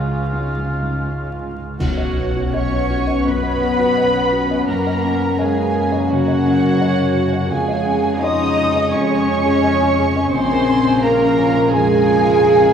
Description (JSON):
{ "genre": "cinematic, emotional film score for orchestra", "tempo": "85 BPM", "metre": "4/4", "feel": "rubato", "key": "unclear", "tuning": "A4 = 440 Hz", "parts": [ { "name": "dark studio violin section", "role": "melody", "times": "0.0-12.7 s", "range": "F5 to Eb6", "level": "-24 LUFS", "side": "equal", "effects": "none" }, { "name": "dark studio violin section", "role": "second line", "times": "0.0-12.7 s", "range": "Db4 to Eb5", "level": "-26 LUFS", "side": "equal", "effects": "none" }, { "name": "warm oboe", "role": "second line", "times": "0.0-1.4 s", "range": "F4", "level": "-33 LUFS", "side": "equal", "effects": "none" }, { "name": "felt-muted upright piano", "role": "accompaniment", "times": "0.0-12.7 s", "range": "Bb1 to F5", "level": "-22 LUFS", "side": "left 3 dB", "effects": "none" }, { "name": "warm studio viola section", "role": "accompaniment", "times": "0.0-12.7 s", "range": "Ab3 to Eb5", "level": "-24 LUFS", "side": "equal", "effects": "none" }, { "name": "dark studio double bass section", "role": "bass", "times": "0.0-12.7 s", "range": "Bb1 to Gb2", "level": "-25 LUFS", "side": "equal", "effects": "none" }, { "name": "rich studio cello section", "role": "bass", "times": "0.0-12.7 s", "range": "Db2 to Eb4", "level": "-23 LUFS", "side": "left 1 dB", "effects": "none" }, { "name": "dark clarinet", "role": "second line", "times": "1.8-12.7 s", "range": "Gb4 to Eb5", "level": "-23 LUFS", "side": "right 3 dB", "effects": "none" }, { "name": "mellow hollow concert flute", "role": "second line", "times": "1.8-12.7 s", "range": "Db5 to C6", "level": "-26 LUFS", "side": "equal", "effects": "none" }, { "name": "dark French horn section", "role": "sustained chords", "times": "1.8-12.7 s", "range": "Db3 to Db4", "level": "-22 LUFS", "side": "right 1 dB", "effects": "none" }, { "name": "clash cymbals and concert bass drum", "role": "percussion", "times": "1.8-3.2 s", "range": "none", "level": "-27 LUFS", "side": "right 1 dB", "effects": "none" } ], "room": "wet cathedral reverb, RT60 7.5 s", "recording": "in a vast, echoing space, vinyl crackle", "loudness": "-14 LUFS", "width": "side -8 dB against mid", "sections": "0.0-1.8 A section; 1.8-12.7 B section", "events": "band accent 1.8-2.5", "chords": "0.0 Db; 1.8 Cbsus2; 4.7 Gb; 7.5 Db/F; 10.3 Bbm7", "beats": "0.33 1.06 | 1.80 2.54 3.26 3.97 | 4.69 5.40 6.11 6.81 | 7.51 8.23 8.94 9.64 | 10.33 11.03 11.73 12.42" }